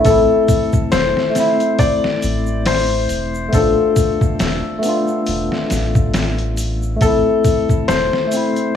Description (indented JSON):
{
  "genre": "trip hop",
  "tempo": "69 BPM",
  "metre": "4/4",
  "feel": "swing 57% on 16ths",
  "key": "A minor",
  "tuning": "A4 = 438 Hz",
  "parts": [
    { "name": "barky tine electric piano", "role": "accompaniment", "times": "0.0-8.8 s", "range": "A3 to F4", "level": "-19 LUFS", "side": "equal", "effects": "harmonic tremolo, tape echo" },
    { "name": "trip hop sampler-style drum kit", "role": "drums", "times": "0.0-8.7 s", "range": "hi-hat, kick drum, snare drum", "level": "-19 LUFS", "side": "equal", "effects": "none" },
    { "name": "felt-muted upright piano", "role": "melody", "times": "0.1-8.8 s", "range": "A4 to D5", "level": "-19 LUFS", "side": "left 5 dB", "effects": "vintage 12-bit sampler grit, tape echo" },
    { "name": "soft dub sub bass", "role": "bass", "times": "0.1-8.1 s", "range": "E1 to A1", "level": "-21 LUFS", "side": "equal", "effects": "none" },
    { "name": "tube shaker", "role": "percussion", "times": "0.1-8.7 s", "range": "none", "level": "-35 LUFS", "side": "right 3 dB", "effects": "none" }
  ],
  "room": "light reverb, digital ambience",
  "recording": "vinyl crackle, small room reverb",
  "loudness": "-14 LUFS",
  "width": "side -9 dB against mid",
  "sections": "0.0-8.8 A section",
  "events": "none",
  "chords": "0.1 Am; 3.5 Bm7b5; 7.0 Am",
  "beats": "| 0.06 0.93 1.80 2.67 | 3.54 4.41 5.27 6.14 | 7.01 7.88 8.75"
}